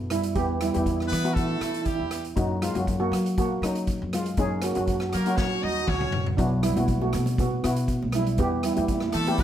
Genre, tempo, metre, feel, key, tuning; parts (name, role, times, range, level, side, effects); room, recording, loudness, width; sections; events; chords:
calypso; 120 BPM; 4/4; straight; A4 = 441 Hz
steel pan; accompaniment; 0.0-9.4 s; A#3 to G4; -31 LUFS; left 3 dB
upright bass; bass; 0.0-9.4 s; B1 to F#3; -28 LUFS; left 1 dB
steel pan; melody; 0.1-9.4 s; F#3 to G#4; -28 LUFS; right 4 dB
street-band drum kit; drums; 0.1-9.4 s; hi-hat, kick drum, rim click, snare drum, toms; -30 LUFS; equal
brilliant horn section; second line; 1.1-9.4 s; G3 to D#5; -30 LUFS; left 2 dB
congas; percussion; 6.8-9.4 s; -33 LUFS; right 4 dB
light reverb; -23 LUFS; side -10 dB against mid
0.0-9.4 A section
drum fill 5.4-6.4
0.4 Emadd9; 2.4 F#; 6.4 Bsus4; 8.4 Em